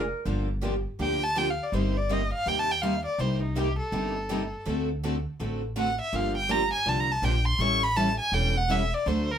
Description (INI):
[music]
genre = acoustic string swing (jazz manouche)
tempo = 164 BPM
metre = 4/4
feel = swing 62% on 8ths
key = G minor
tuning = A4 = 440 Hz
[part]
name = upright bass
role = bass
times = 0.0-9.4 s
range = E1 to Eb2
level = -30 LUFS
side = equal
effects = none
[part]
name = picked steel-string acoustic guitar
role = accompaniment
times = 0.3-9.3 s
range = C3 to A4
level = -31 LUFS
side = left 2 dB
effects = none
[part]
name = picked steel-string acoustic guitar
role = accompaniment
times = 0.3-9.3 s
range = C3 to A4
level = -34 LUFS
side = right 4 dB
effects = none
[part]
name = rich violin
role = melody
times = 1.0-9.4 s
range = Eb4 to C#6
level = -27 LUFS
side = equal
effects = none
[sound]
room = moderate studio reverb, RT60 0.5 s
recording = minimal, uncompressed stereo recording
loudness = -24 LUFS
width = side -9 dB against mid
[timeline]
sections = 0.3-9.4 A section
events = violin solo 0.3-9.4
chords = 0.3 Gm7; 1.7 Eb6/G; 4.7 D7; 6.1 Gm7; 7.6 A7